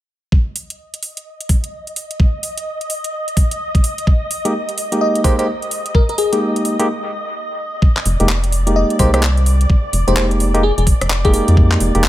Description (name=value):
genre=UK garage, two-step garage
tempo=128 BPM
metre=4/4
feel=swing 62% on 16ths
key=unclear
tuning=A4 = 440 Hz
part: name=soft string machine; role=sustained chords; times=1.2-12.1 s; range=D5 to Eb5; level=-26 LUFS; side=equal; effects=ensemble chorus, sidechain pumping
part: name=electronic kick drum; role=drums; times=0.3-11.7 s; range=none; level=-13 LUFS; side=equal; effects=studio reverb
part: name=garage drum kit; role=drums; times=0.6-12.1 s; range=handclaps, hi-hat, rim click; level=-22 LUFS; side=equal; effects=studio reverb
part: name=barky tine electric piano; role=stabs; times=4.5-12.0 s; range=Ab3 to G4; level=-19 LUFS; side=equal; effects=overdrive, low-pass filter, dub echo
part: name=bell-like FM electric piano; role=melody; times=5.0-11.4 s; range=Ab4 to Eb5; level=-21 LUFS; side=left 1 dB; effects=chorus, phaser
part: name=rubbery square bass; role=bass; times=8.1-12.1 s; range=F1 to F2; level=-15 LUFS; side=equal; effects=none
room=little or no reverb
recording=none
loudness=-14 LUFS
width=side -14 dB against mid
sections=0.3-7.8 A section; 7.8-12.1 B section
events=filter sweep on string machine 0.3-7.8; break 6.9-7.8; filter sweep on tine electric piano 7.8-12.1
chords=0.3 Abmaj7sus2; 7.6 N.C.; 7.8 Fm11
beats=| 0.32 0.79 1.26 1.73 | 2.20 2.67 3.13 3.60 | 4.07 4.54 5.01 5.48 | 5.95 6.42 6.88 7.35 | 7.82 8.29 8.76 9.23 | 9.70 10.16 10.63 11.10 | 11.57 12.04